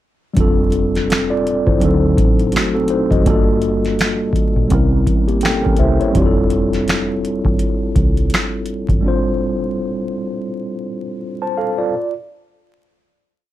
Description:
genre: lo-fi hip hop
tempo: 83 BPM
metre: 4/4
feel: swing 57% on 16ths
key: F major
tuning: A4 = 440 Hz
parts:
  - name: mellow tine electric piano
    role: accompaniment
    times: 0.3-12.1 s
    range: F#3 to A5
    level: -17 LUFS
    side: equal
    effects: medium stereo tremolo, cassette tape, low-pass filter
  - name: deep dub fingered electric bass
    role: bass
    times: 0.4-9.0 s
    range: F1 to D2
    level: -20 LUFS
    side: equal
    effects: none
  - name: booming analog drum machine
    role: drums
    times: 0.4-9.0 s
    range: finger snaps, hi-hat, kick drum, snare drum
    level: -18 LUFS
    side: equal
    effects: none
room: light reverb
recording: vinyl crackle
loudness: -14 LUFS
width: side -14 dB against mid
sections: 0.4-11.9 A section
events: tine electric piano fill 5.1-6.1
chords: 0.4 F69; 1.8 D7b9; 3.3 Gm9; 4.7 C7b9; 6.1 F69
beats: | 0.36 1.09 1.81 2.53 | 3.26 3.98 4.70 5.42 | 6.15 6.87 7.59 8.32 | 9.04 9.76 10.48 11.21

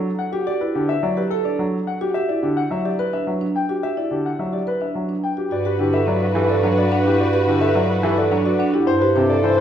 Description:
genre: classical, minimalist pattern music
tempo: 107 BPM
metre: 3/4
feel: straight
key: G major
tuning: A4 = 439 Hz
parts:
  - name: clear concert grand piano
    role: accompaniment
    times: 0.0-9.6 s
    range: C3 to F#3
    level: -24 LUFS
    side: right 1 dB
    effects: none
  - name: warm concert grand piano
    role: melody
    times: 0.2-9.6 s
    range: G4 to G5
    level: -23 LUFS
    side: left 7 dB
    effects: none
  - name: marimba with soft mallets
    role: arpeggios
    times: 0.3-9.5 s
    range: D4 to B4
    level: -22 LUFS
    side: right 4 dB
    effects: none
  - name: dark clarinet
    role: second line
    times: 5.5-9.6 s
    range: B4 to C5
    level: -26 LUFS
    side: right 3 dB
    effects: none
  - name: rich symphonic string section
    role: sustained chords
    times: 5.5-9.6 s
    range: F#4 to C5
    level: -27 LUFS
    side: left 2 dB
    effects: none
  - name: warm bass clarinet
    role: bass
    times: 5.5-9.6 s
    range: G2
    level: -24 LUFS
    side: left 1 dB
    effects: none
room: wet recital hall reverb, RT60 1.4 s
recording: heard from further back in the room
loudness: -18 LUFS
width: side -9 dB against mid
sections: 0.0-5.5 A section; 5.5-9.6 A section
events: none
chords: 0.0 Gmaj7(no3); 2.1 Em7; 5.5 Gmaj9; 8.9 Am9/G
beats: | 0.47 1.03 1.59 | 2.15 2.71 3.27 | 3.83 4.39 4.95 | 5.51 6.08 6.64 | 7.20 7.76 8.32 | 8.88 9.44

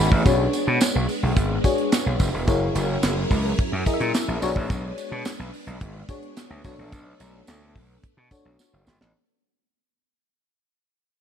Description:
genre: early-eighties boogie funk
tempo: 108 BPM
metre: 4/4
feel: straight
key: B dorian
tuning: A4 = 440 Hz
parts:
  - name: FM electric piano with soft pad layer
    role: accompaniment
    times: 0.0-8.8 s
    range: C#4 to B5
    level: -27 LUFS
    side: left 3 dB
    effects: chorus
  - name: string machine, violins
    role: sustained chords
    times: 0.0-9.1 s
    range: E3 to C#5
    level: -29 LUFS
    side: equal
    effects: ensemble chorus
  - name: gritty slap bass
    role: bass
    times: 0.0-9.1 s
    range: E1 to B2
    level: -24 LUFS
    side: equal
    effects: overdrive
  - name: tight funk drum kit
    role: drums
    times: 0.1-9.1 s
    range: handclaps, hi-hat, kick drum, snare drum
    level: -23 LUFS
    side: right 1 dB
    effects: none
  - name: tambourine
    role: percussion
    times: 0.3-9.0 s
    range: none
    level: -36 LUFS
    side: right 5 dB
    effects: none
room: moderate plate reverb, RT60 1.7 s, small room ambience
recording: dreamy mix soaked in reverb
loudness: -20 LUFS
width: side -8 dB against mid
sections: 0.0-9.1 A section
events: fade-out 0.0-9.1; FM electric piano fill 0.0; drum fill 8.6-9.1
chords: 0.3 Bm69; 2.5 F#7; 4.4 Bm69; 6.6 Bm7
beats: | 0.26 0.81 1.37 1.92 | 2.48 3.04 3.59 4.15 | 4.70 5.26 5.81 6.37 | 6.92 7.48 8.04 8.59

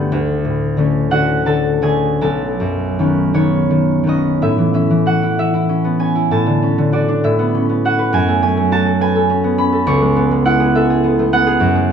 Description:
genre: classical, solo harp piece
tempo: 50-71 BPM (dotted quarters)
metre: 6/8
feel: rubato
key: A major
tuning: A4 = 441 Hz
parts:
  - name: concert harp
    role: solo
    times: 0.0-11.9 s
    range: B1 to C#6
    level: -13 LUFS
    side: equal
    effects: none
room: wet recital hall reverb, RT60 1.7 s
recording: dark, warm production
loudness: -13 LUFS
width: side -7 dB against mid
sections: 0.0-4.4 A section; 4.4-11.9 B section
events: none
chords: 0.1 Dmaj7; 2.2 B9; 4.4 A6; 6.3 Dmaj7/A; 7.2 A69; 8.1 F#madd9; 9.9 C#m7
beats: | 0.12 1.10 | 2.20 3.34 | 4.42 5.39 | 6.31 7.24 | 8.13 9.01 | 9.88 10.76 | 11.62

